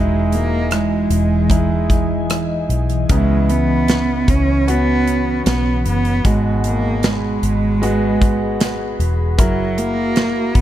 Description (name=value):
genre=pop ballad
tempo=76 BPM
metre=4/4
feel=straight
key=G# minor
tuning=A4 = 440 Hz
part: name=rich cello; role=melody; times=0.0-10.6 s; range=F#3 to C#4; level=-20 LUFS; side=right 2 dB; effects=none
part: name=clear concert grand piano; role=accompaniment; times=0.0-10.6 s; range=G#2 to A#4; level=-22 LUFS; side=equal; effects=none
part: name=glassy FM pad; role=sustained chords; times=0.0-10.6 s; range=E3 to B5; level=-25 LUFS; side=left 2 dB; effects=ensemble chorus, built-in reverb
part: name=vintage muted fingered electric bass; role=bass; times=0.0-10.6 s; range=E1 to C#2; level=-20 LUFS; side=equal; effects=none
part: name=modern studio drum kit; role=drums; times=0.3-10.6 s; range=hi-hat, kick drum, rim click, snare drum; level=-18 LUFS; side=equal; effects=none
room=small room ambience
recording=dark, warm production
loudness=-14 LUFS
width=side -12 dB against mid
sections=0.0-10.6 A section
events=none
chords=0.0 Emaj7; 3.1 C#m7; 6.2 G#m7; 9.4 F#7